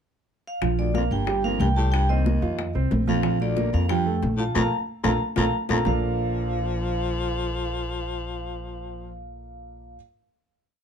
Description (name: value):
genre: Afro-Cuban jazz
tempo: 183 BPM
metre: 4/4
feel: straight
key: Bb major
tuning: A4 = 441 Hz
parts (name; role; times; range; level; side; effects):
- vibraphone with medium hard mallets; melody; 0.5-10.0 s; D5 to Bb5; -30 LUFS; equal; none
- warm concert grand piano; accompaniment; 0.6-10.0 s; F3 to G5; -29 LUFS; right 7 dB; none
- upright bass; bass; 0.6-10.0 s; G1 to F2; -26 LUFS; equal; none
- bongos; percussion; 0.6-5.9 s; none; -33 LUFS; left 6 dB; none
- congas; percussion; 0.6-5.9 s; none; -30 LUFS; right 1 dB; none
- warm baritone saxophone; second line; 0.8-9.2 s; D2 to F3; -30 LUFS; left 5 dB; none
room: light reverb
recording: dark, warm production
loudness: -22 LUFS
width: side -8 dB against mid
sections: 0.0-0.6 pickup bar; 0.6-5.9 A section; 5.9-8.5 final chord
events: band accent 4.6-5.9; drum fill 4.9-5.9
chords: 0.0 N.C.; 0.6 Bb5; 1.3 Gm; 1.9 Cm7; 2.6 F5; 3.2 Bbmaj7